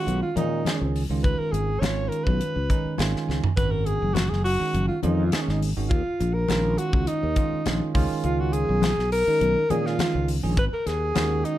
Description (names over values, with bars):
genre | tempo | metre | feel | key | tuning
electric jazz fusion | 103 BPM | 4/4 | straight | unclear | A4 = 440 Hz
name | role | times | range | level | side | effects
warm alto saxophone | melody | 0.0-11.6 s | C#4 to C#5 | -26 LUFS | left 1 dB | slapback echo, plate reverb
bell-like tine electric piano | accompaniment | 0.0-11.6 s | D#3 to G#5 | -28 LUFS | right 4 dB | none
sustaining fretless electric bass | bass | 0.1-11.4 s | F#1 to A#2 | -26 LUFS | equal | wide subtle chorus
crisp fusion drum kit | drums | 0.1-11.6 s | hi-hat, kick drum, snare drum, toms | -28 LUFS | equal | none
congas | percussion | 0.1-11.3 s | none | -31 LUFS | left 6 dB | none
room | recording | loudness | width
light reverb | dark, warm production | -21 LUFS | side -13 dB against mid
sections
0.0-11.6 A section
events
tine electric piano fill 2.7-3.6; drum fill 3.3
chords
0.0 C#9; 3.6 G#7sus4; 5.9 D#sus2; 7.9 C#9; 10.6 G#7sus4